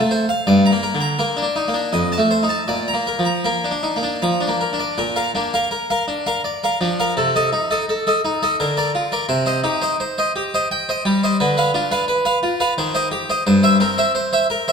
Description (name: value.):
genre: classical, baroque-style suite movement for harpsichord.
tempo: 78-88 BPM.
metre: 3/4.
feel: rubato.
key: Bb major.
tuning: A4 = 440 Hz.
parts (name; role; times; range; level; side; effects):
harpsichord; solo; 0.0-14.7 s; F2 to Bb5; -17 LUFS; equal; none.
room: moderate concert hall reverb, RT60 1.7 s.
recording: none.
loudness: -17 LUFS.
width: side -6 dB against mid.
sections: 0.0-5.0 A section; 5.0-14.7 B section.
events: none.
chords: 0.5 Gm; 1.9 F7; 2.7 Bb; 7.2 Adim/C; 8.6 Bb/D; 9.3 Cm; 11.4 Bdim/D; 12.8 Cm/Eb; 13.5 C7/G.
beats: | 0.46 1.18 1.92 | 2.68 3.45 4.21 | 4.98 5.72 6.46 | 7.17 7.88 8.59 | 9.29 9.99 10.70 | 11.39 12.08 12.76 | 13.45 14.15.